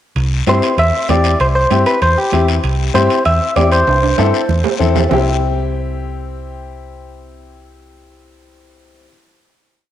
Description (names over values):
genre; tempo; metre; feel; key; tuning
latin, cumbia; 194 BPM; 4/4; straight; C major; A4 = 440 Hz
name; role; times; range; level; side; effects
hollow-body short-scale picked electric bass; bass; 0.2-9.1 s; C2 to G2; -17 LUFS; right 1 dB; none
congas; percussion; 0.2-5.2 s; none; -26 LUFS; right 11 dB; none
guiro; percussion; 0.2-5.2 s; none; -28 LUFS; left 9 dB; none
timbales; percussion; 0.2-5.2 s; none; -24 LUFS; right 11 dB; none
direct-recorded clean electric guitar; melody; 0.5-4.8 s; G4 to E5; -15 LUFS; equal; spring reverb
clear upright piano; accompaniment; 0.5-9.1 s; C4 to A4; -19 LUFS; left 6 dB; cassette tape
room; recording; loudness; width
moderate lush hall reverb, RT60 2.4 s; home recording on cassette; -12 LUFS; side -11 dB against mid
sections
0.2-5.1 A section; 5.1-7.6 final chord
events
drum fill 3.9-5.1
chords
0.2 C